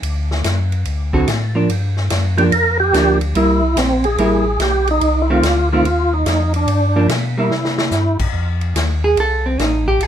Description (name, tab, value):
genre	soul jazz organ trio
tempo	144 BPM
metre	4/4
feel	swing 66% on 8ths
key	F mixolydian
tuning	A4 = 438 Hz
part	tonewheel organ	bass	0.0-10.1 s	A1 to C3	-18 LUFS	left 1 dB	chorus vibrato, slow rotary speaker
part	swinging big-band drum kit	drums	0.0-10.1 s	crash cymbal, hi-hat, kick drum, ride cymbal, snare drum	-24 LUFS	left 2 dB	none
part	vintage hollow-body jazz guitar	accompaniment	1.1-10.1 s	D3 to A4	-17 LUFS	right 2 dB	none
part	percussive tonewheel organ	melody	2.4-8.2 s	C4 to Bb4	-17 LUFS	right 1 dB	slow rotary speaker, overdrive, chorus vibrato
room	light reverb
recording	minimal, uncompressed stereo recording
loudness	-14 LUFS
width	side -9 dB against mid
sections	0.0-8.3 A section; 8.3-10.1 B section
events	drum fill 7.5-7.9; hollow-body jazz guitar solo 8.3-10.1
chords	0.0 D; 1.7 Gm7; 3.4 C7; 5.0 F7; 6.7 Gm7; 7.5 C; 8.3 F7